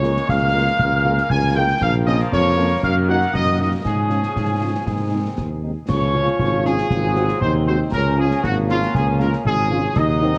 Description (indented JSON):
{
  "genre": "military-style march for wind band",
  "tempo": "118 BPM",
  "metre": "2/4",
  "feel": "straight",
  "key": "Db major",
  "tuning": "A4 = 440 Hz",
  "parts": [
    { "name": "mellow trumpet section", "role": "melody", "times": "0.0-10.4 s", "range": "F4 to Ab5", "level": "-25 LUFS", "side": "equal", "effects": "tape echo" },
    { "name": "mellow hollow wooden piccolo", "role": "second line", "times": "0.0-10.4 s", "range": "F5 to Ab6", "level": "-30 LUFS", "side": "equal", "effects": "none" },
    { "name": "mellow French horn section", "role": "accompaniment", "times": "0.0-10.3 s", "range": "Gb3 to Gb4", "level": "-29 LUFS", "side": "equal", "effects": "none" },
    { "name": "clear trombone section", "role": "sustained chords", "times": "0.0-10.4 s", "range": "Eb3 to Eb4", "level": "-32 LUFS", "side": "equal", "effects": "none" },
    { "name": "dark tuba", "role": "bass", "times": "0.0-10.4 s", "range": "Ab1 to Ab2", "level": "-23 LUFS", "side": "equal", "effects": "none" },
    { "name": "concert snare drum, concert bass drum and clash cymbals", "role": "drums", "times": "0.0-10.4 s", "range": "none", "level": "-28 LUFS", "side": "equal", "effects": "vintage 12-bit sampler grit" },
    { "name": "warm euphonium", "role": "second line", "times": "5.9-10.4 s", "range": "Ab3 to F4", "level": "-29 LUFS", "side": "equal", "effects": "none" }
  ],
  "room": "light reverb, small room ambience",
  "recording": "cassette tape",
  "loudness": "-19 LUFS",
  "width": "mono",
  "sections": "0.0-5.9 A section; 5.9-10.4 B section",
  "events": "none",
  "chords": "0.0 Bbm7/Db; 1.8 Bbm; 2.8 Ebm/Gb; 3.9 Db/Ab; 4.9 Ab; 5.9 Db; 6.9 Ab7; 7.9 Db",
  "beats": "0.29 | 0.80 1.30 | 1.81 2.32 | 2.83 3.34 | 3.85 4.36 | 4.87 5.38 | 5.89 6.40 | 6.91 7.42 | 7.93 8.44 | 8.95 9.45 | 9.96"
}